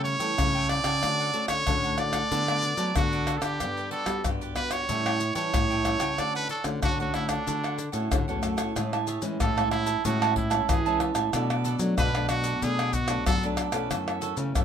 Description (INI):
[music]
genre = samba and choro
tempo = 93 BPM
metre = 4/4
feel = straight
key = D major, A major from 8.8 s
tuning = A4 = 439 Hz
[part]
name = brilliant trumpet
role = melody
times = 0.0-13.5 s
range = D4 to D5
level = -28 LUFS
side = right 1 dB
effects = none
[part]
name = cavaquinho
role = accompaniment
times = 0.0-14.6 s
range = D4 to A5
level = -32 LUFS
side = right 11 dB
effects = none
[part]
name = nylon-string guitar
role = accompaniment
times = 0.0-14.6 s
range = F#2 to F#4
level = -34 LUFS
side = left 3 dB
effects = none
[part]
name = nylon-string guitar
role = bass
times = 0.0-14.6 s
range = E2 to G3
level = -30 LUFS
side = equal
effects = none
[part]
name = pandeiro, maracas, surdo and tamborim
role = percussion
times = 0.1-14.6 s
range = none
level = -29 LUFS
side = left 2 dB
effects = none
[sound]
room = moderate small room ambience, RT60 0.5 s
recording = minimal, uncompressed stereo recording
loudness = -24 LUFS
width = side -8 dB against mid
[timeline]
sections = 0.0-8.8 A section; 8.8-14.6 B section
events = trumpet solo 8.8-14.6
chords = 0.0 A7/C#; 1.0 Dmaj7; 2.3 Bm7/D; 3.6 Gmaj7; 4.9 A7; 6.2 Dmaj7; 8.8 Amaj7; 11.3 Bm7; 13.9 F#m7